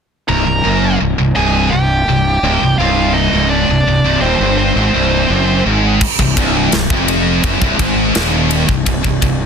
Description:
heavy metal; 84 BPM; 4/4; straight; C minor; A4 = 440 Hz
high-gain lead guitar; melody; 0.3-5.6 s; C5 to Bb5; -18 LUFS; right 1 dB; distortion
high-gain lead guitar; second line; 0.3-5.6 s; C4 to Bb4; -22 LUFS; right 3 dB; distortion, ping-pong delay
scooped high-gain guitar; riff; 0.3-9.5 s; C2 to Ab2; -18 LUFS; left 11 dB; distortion
scooped high-gain guitar; riff; 0.3-9.5 s; C2 to Ab2; -17 LUFS; right 11 dB; distortion
fuzz fingered electric bass; bass; 0.3-9.5 s; C1 to Ab1; -18 LUFS; equal; overdrive
tight metal drum kit; drums; 6.0-9.4 s; crash cymbal, kick drum, ride cymbal, snare drum; -17 LUFS; equal
high-gain distorted guitar; riff; 6.2-9.5 s; C2 to Ab2; -21 LUFS; left 1 dB; distortion
light reverb; dense, heavily limited modern master; -11 LUFS; side -6 dB against mid
0.3-6.0 A section; 6.0-9.5 B section
0.3 C5; 6.0 Cm
| 0.29 1.01 1.73 2.44 | 3.16 3.87 4.59 5.30 | 6.02 6.73 7.45 8.16 | 8.87

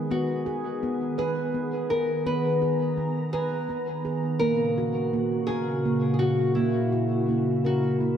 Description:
world meditative, meditative tuned percussion; 56 BPM (dotted quarters); 6/8; straight; G# minor; A4 = 439 Hz
glassy FM pad; sustained chords; 0.0-8.2 s; A#2 to A#5; -27 LUFS; equal; ensemble chorus, built-in reverb
handpan; arpeggios; 0.0-8.2 s; A#3 to B4; -28 LUFS; right 2 dB; diffuse ambient delay
nylon-string guitar; melody; 0.1-8.2 s; E4 to B4; -29 LUFS; left 3 dB; diffuse ambient delay
wet lush hall reverb, RT60 1.9 s, studio reverb; -23 LUFS; side -9 dB against mid
0.1-8.2 A section
0.1 G#m; 4.4 F#
| 0.11 1.18 | 2.26 3.33 | 4.41 5.49 | 6.57 7.64

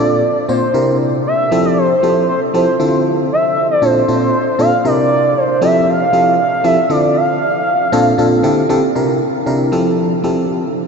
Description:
funk; 117 BPM; 4/4; straight; A4 = 441 Hz
gliding portamento lead; melody; 0.0-8.7 s; C5 to F5; -15 LUFS; right 1 dB; chorus, analog delay
FM electric piano; accompaniment; 0.0-10.6 s; Bb2 to C5; -14 LUFS; equal; chorus
wet huge ambient reverb, RT60 7.9 s; dreamy mix soaked in reverb; -12 LUFS; side -5 dB against mid
0.0-8.9 A section; 8.9-10.9 B section
0.0 Bbmaj9; 0.7 C7; 1.5 Fmaj7; 2.8 Dm9; 3.8 Bbmaj9; 4.8 C7; 5.6 Fmaj7; 6.9 Dm9; 7.9 Bbmaj9; 8.4 D7sus4; 8.9 C7; 9.7 Fmaj7
0.23 | 0.74 1.26 1.77 2.28 | 2.79 3.31 3.82 4.33 | 4.85 5.36 5.87 6.38 | 6.90 7.41 7.92 8.44 | 8.95 9.46 9.97 10.49

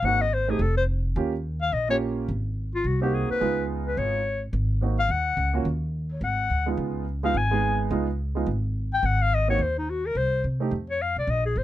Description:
jazz, small-group swing and bop; 213 BPM; 4/4; swing 60% on 8ths; Ab major; A4 = 440 Hz
warm clarinet; melody; 0.0-11.6 s; Eb4 to Ab5; -25 LUFS; left 4 dB
warm baby grand piano; accompaniment; 0.0-10.7 s; Ab3 to Ab4; -28 LUFS; right 6 dB
upright bass; bass; 0.0-11.6 s; F1 to C3; -26 LUFS; equal
little or no reverb; close, detailed microphones; -23 LUFS; side -14 dB against mid
0.0-2.3 A section; 2.3-11.6 A section
0.0 Ab7; 0.6 F; 1.2 Eb7; 2.3 Ab7; 3.4 Db7; 4.5 Ab7; 5.7 N.C.; 6.2 Ab5; 6.8 Db7; 9.0 Ab7(no3); 10.2 Cm; 10.7 F5
| 0.03 0.31 0.59 0.88 | 1.16 1.44 1.72 2.00 | 2.28 2.56 2.84 3.12 | 3.40 3.68 3.96 4.25 | 4.53 4.81 5.09 5.37 | 5.65 5.93 6.21 6.50 | 6.78 7.06 7.34 7.62 | 7.90 8.18 8.46 8.75 | 9.03 9.31 9.59 9.87 | 10.15 10.43 10.72 11.00 | 11.28 11.56

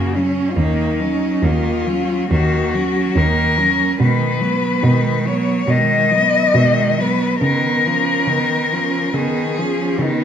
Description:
classical, lyrical piece for cello ensemble; 70 BPM; 4/4; rubato; A4 = 440 Hz
warm cello; melody; 0.0-10.2 s; C#4 to D#5; -18 LUFS; left 5 dB
rich cello; second line; 0.0-10.2 s; G#3 to C#4; -22 LUFS; right 6 dB
rich cello; accompaniment; 0.0-10.2 s; C#3 to F#3; -23 LUFS; left 2 dB
rich cello; bass; 0.0-10.2 s; D#2 to C#3; -20 LUFS; right 1 dB
wet recital hall reverb, RT60 1.4 s; -14 LUFS; side -8 dB against mid
0.0-10.2 A section
0.0 F#; 0.6 D#m7; 4.0 G#m7/B; 7.4 C#9
| 0.58 1.44 2.31 3.17 | 4.00 4.84 5.69 6.56 | 7.43 8.29 9.14 10.00

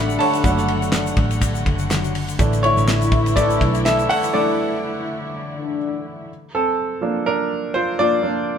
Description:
piano-driven pop; 123 BPM; 4/4; swing 56% on 16ths; A4 = 440 Hz
mellow French horn section; second line; 0.0-6.0 s; D3 to F#4; -26 LUFS; left 4 dB
clear grand piano; accompaniment; 0.0-8.6 s; E3 to B5; -20 LUFS; right 1 dB
muted studio string section; sustained chords; 0.0-6.3 s; D3 to F#5; -27 LUFS; left 2 dB
vintage muted picked electric bass; bass; 0.0-4.1 s; F#1 to B1; -22 LUFS; equal
tube shaker; percussion; 0.1-4.3 s; -36 LUFS; left 7 dB
damped 70s drum kit; drums; 0.2-4.3 s; handclaps, hi-hat, kick drum, ride cymbal, snare drum; -23 LUFS; equal
moderate studio reverb, RT60 0.7 s; band playing live in one room; -17 LUFS; side -8 dB against mid
0.0-6.3 A section; 6.3-8.6 A section
grand piano solo 0.0-6.3, 6.3-8.6; break 4.3-6.3
0.0 D/F#; 2.4 Asus4; 6.3 Bb
| 0.45 0.93 1.42 1.91 | 2.39 2.88 3.37 3.85 | 4.34 4.83 5.31 5.80 | 6.29 6.77 7.26 7.75 | 8.23

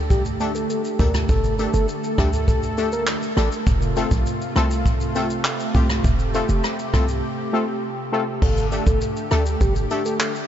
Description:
dancehall; 101 BPM; 4/4; straight; A4 = 440 Hz
warm analog pad; sustained chords; 0.0-10.5 s; C3 to A4; -27 LUFS; right 1 dB; chorus, sidechain pumping
short 808-style bass; bass; 0.0-9.9 s; F1 to D2; -23 LUFS; equal
soft octave-layered synth lead; melody; 0.1-3.5, 8.4-10.3 s; G4 to Bb4; -28 LUFS; equal; chorus, ping-pong delay
vintage brush drum kit; drums; 0.1-10.5 s; crash cymbal, handclaps, hi-hat, kick drum, rim click, shaker; -23 LUFS; equal
synth brass stab; accompaniment; 0.4-10.0 s; A3 to A4; -27 LUFS; left 2 dB; chorus
light reverb, small room ambience; nothing above 7.7 kHz; -19 LUFS; side -10 dB against mid
0.0-8.4 A section; 8.4-10.5 B section
break 7.2-8.4
0.0 Gsus2; 3.7 F; 8.4 Gsus2
0.10 0.70 | 1.29 1.89 2.48 3.08 | 3.67 4.26 4.86 5.45 | 6.05 6.64 7.23 7.83 | 8.42 9.02 9.61 10.20

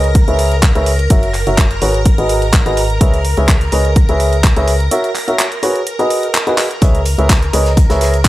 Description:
piano house; 126 BPM; 4/4; swing 53% on 16ths; C# dorian; A4 = 440 Hz
string machine, violins; sustained chords; 0.0-8.3 s; A#4 to A#5; -22 LUFS; equal; ensemble chorus, sidechain pumping
clear upright piano; riff; 0.0-8.1 s; F#4 to E5; -17 LUFS; equal; sidechain pumping, low-pass filter
organ-like FM bass; bass; 0.0-8.3 s; F#1 to C#2; -16 LUFS; equal; sidechain pumping
house drum kit; drums; 0.0-8.3 s; handclaps, hi-hat; -19 LUFS; right 1 dB
electronic kick drum; drums; 0.2-8.3 s; -11 LUFS; equal
modern studio drum kit; drums; 6.8-8.3 s; hi-hat, snare drum; -27 LUFS; left 1 dB; sidechain pumping on hats, high-pass filter on hats, high-pass filter on snare, high-pass filter on room
small room ambience; -11 LUFS; side -16 dB against mid
0.0-8.3 A section
break 4.9-6.8; drum fill 6.6
0.0 C#m7; 1.1 F#7; 1.8 G#m7; 3.0 C#m7; 4.9 F#7; 5.6 G#m7; 6.8 C#m7
0.15 0.63 | 1.10 1.58 2.06 2.53 | 3.01 3.48 3.96 4.44 | 4.91 5.39 5.87 6.34 | 6.82 7.29 7.77 8.25

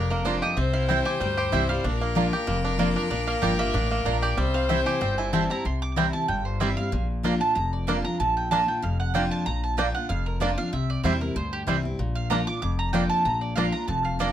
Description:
bluegrass; 189 BPM; 4/4; swing 54% on 8ths; A4 = 440 Hz
clear fiddle; second line; 0.0-5.5 s; Bb4 to C5; -29 LUFS; left 5 dB
picked steel-string acoustic guitar; accompaniment; 0.0-14.3 s; F2 to F4; -28 LUFS; left 2 dB
bluegrass banjo; arpeggios; 0.0-14.3 s; G3 to G4; -30 LUFS; right 3 dB
upright bass; bass; 0.0-14.3 s; F1 to E2; -29 LUFS; equal
mandolin; melody; 0.1-14.3 s; F4 to D6; -29 LUFS; right 3 dB; slapback echo
mandolin; stabs; 0.3-14.3 s; Bb3 to Bb5; -29 LUFS; right 9 dB
light reverb; close, detailed microphones; -22 LUFS; side -10 dB against mid
0.0-5.7 A section; 5.7-14.3 A section
mandolin solo 0.0-14.3
0.0 Bb; 0.6 C; 1.8 Bb; 4.4 C; 6.9 Bb; 10.7 C; 12.0 Bb
0.25 | 0.57 0.89 1.20 1.52 | 1.84 2.16 2.47 2.79 | 3.11 3.43 3.75 4.06 | 4.38 4.70 5.02 5.34 | 5.65 5.97 6.29 6.61 | 6.93 7.24 7.56 7.88 | 8.20 8.52 8.83 9.15 | 9.47 9.78 10.10 10.42 | 10.73 11.05 11.36 11.68 | 11.99 12.31 12.62 12.94 | 13.25 13.57 13.88 14.20

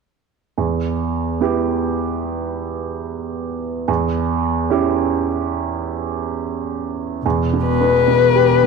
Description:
neoclassical piano and strings; 72 BPM; 4/4; rubato; A4 = 440 Hz
clear upright piano; accompaniment; 0.6-8.7 s; E2 to G4; -19 LUFS; right 5 dB
muted double bass; bass; 7.2-8.7 s; E1; -20 LUFS; left 3 dB
muted violin; melody; 7.7-8.7 s; B4; -14 LUFS; left 12 dB
moderate echo chamber reverb, RT60 2.4 s; 1960s-style stereo; -18 LUFS; side -4 dB against mid
0.6-7.2 A section; 7.2-8.7 B section
0.6 Em; 3.9 C#dim/E; 7.2 Em
| 0.57 1.41 2.23 3.06 | 3.88 4.71 5.54 6.39 | 7.25 8.08

